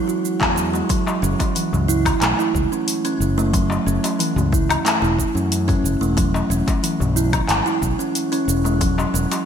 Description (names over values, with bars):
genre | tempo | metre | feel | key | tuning
organic downtempo | 91 BPM | 4/4 | straight | F# minor | A4 = 438 Hz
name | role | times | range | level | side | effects
kalimba | arpeggios | 0.1-9.2 s | E3 to F#4 | -21 LUFS | right 2 dB | digital delay
deep house drum kit | drums | 0.1-9.4 s | cabasa, handclaps, hi-hat, woodblock | -23 LUFS | left 1 dB | gated reverb
fretless electric bass | bass | 0.4-9.2 s | E1 to F#2 | -21 LUFS | left 1 dB | none
electronic kick drum | drums | 0.4-8.9 s | none | -23 LUFS | left 1 dB | none
darbuka | percussion | 0.7-9.4 s | none | -29 LUFS | left 3 dB | none
room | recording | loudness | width
moderate lush hall reverb, RT60 2.2 s | bright 1980s-style digital production | -17 LUFS | side -8 dB against mid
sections
0.9-9.5 A section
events
none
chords
0.0 E; 0.9 F#m7; 6.2 E